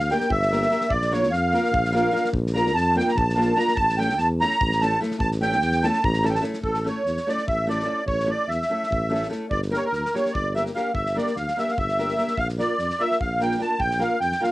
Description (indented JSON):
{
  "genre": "balkan folk, Balkan wedding band",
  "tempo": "293 BPM (eighths)",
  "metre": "7/8",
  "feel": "straight",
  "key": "A phrygian dominant",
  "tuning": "A4 = 442 Hz",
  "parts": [
    { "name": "musette accordion", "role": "melody", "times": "0.0-14.5 s", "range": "A4 to Bb5", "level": "-23 LUFS", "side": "right 1 dB", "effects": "none" },
    { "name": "mellow tuba", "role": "bass", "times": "0.0-14.3 s", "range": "G1 to F2", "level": "-26 LUFS", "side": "equal", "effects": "none" },
    { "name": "loose indie drum kit", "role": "percussion", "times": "0.0-14.5 s", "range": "kick drum, snare drum", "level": "-33 LUFS", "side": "equal", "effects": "none" },
    { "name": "nylon-string guitar", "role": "accompaniment", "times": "0.1-14.5 s", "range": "A3 to Bb4", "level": "-27 LUFS", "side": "left 1 dB", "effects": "cassette tape" }
  ],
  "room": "light reverb",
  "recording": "home recording on cassette",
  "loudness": "-20 LUFS",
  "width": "side -18 dB against mid",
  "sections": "0.0-6.6 A section; 6.6-14.5 B section",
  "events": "accordion solo 0.0-6.6",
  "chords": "0.0 Gm; 0.9 Bb; 3.8 A; 9.5 Gm; 12.4 Bb"
}